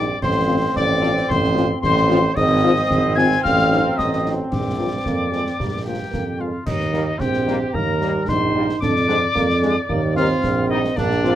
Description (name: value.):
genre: military-style march for wind band.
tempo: 112 BPM.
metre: 2/4.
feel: straight.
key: Eb major.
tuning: A4 = 440 Hz.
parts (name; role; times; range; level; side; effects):
mellow cornet; melody; 0.0-11.4 s; D4 to Ab5; -24 LUFS; right 1 dB; none.
wooden piccolo; second line; 0.0-11.4 s; D5 to Ab6; -25 LUFS; left 5 dB; none.
mellow French horn section; accompaniment; 0.0-11.3 s; D3 to Ab4; -24 LUFS; left 4 dB; none.
warm trombone section; sustained chords; 0.0-11.3 s; F3 to F4; -26 LUFS; right 1 dB; none.
warm tuba; bass; 0.0-11.4 s; Ab1 to F2; -21 LUFS; right 2 dB; none.
concert snare drum, clash cymbals and concert bass drum; drums; 0.2-11.4 s; none; -28 LUFS; left 1 dB; none.
warm euphonium; second line; 5.1-11.4 s; F3 to Eb4; -24 LUFS; right 3 dB; none.
room: moderate studio ambience, RT60 0.5 s.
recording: none.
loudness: -17 LUFS.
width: side -11 dB against mid.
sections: 0.0-6.7 A section; 6.7-11.4 B section.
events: none.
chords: 0.2 F/A; 2.4 Fm7/Ab; 3.4 Adim7; 4.5 Bb; 6.7 Eb; 8.8 Ddim/F; 9.9 Eb.